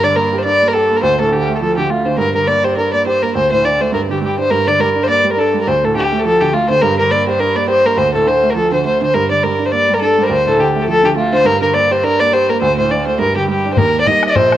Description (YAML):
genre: celtic folk, Celtic reel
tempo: 207 BPM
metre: 4/4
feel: swing 57% on 8ths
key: G minor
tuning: A4 = 439 Hz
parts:
  - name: dark fiddle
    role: melody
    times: 0.0-14.6 s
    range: F4 to Eb5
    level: -13 LUFS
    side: left 1 dB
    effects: cassette tape
  - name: warm upright piano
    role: accompaniment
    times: 0.0-14.6 s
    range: Bb1 to G4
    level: -18 LUFS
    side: right 5 dB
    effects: cassette tape
  - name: bodhran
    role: percussion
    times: 13.8-14.6 s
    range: none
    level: -17 LUFS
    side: left 5 dB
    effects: none
room: moderate lush hall reverb, RT60 2.2 s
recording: home recording on cassette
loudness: -12 LUFS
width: side -12 dB against mid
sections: 0.0-4.5 A section; 4.5-13.8 A section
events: none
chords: 0.0 Gm; 1.0 Dm; 2.2 Gm; 3.3 D5; 3.9 G5; 4.5 Gm; 5.7 Dm; 6.8 Gm; 8.0 Dm; 9.1 Gm; 10.3 Dm; 11.5 Gm; 12.6 D5; 13.2 G5; 13.8 Eb